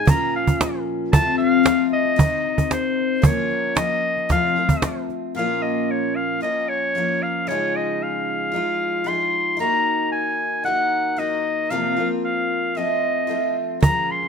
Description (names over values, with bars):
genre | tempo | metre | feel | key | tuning
acoustic folk duo or small band | 113 BPM | 4/4 | straight | Bb minor | A4 = 438 Hz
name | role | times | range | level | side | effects
bright clarinet | melody | 0.0-14.3 s | C5 to C6 | -22 LUFS | left 1 dB | plate reverb
picked twelve-string acoustic guitar | accompaniment | 0.0-14.3 s | F2 to Gb4 | -23 LUFS | left 2 dB | none
cajon | percussion | 0.1-5.2, 13.8-14.3 s | none | -18 LUFS | right 2 dB | none
room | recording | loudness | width
moderate studio reverb, RT60 0.7 s | close, detailed microphones | -19 LUFS | side -6 dB against mid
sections
0.0-5.4 A section; 5.4-14.3 B section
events
none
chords
0.1 Bbm; 1.1 F; 2.2 Cdim; 3.2 Bbm/F; 4.3 F; 5.4 Bbm; 7.5 Dbadd9; 9.6 Ebm; 11.7 Fsus4; 12.8 F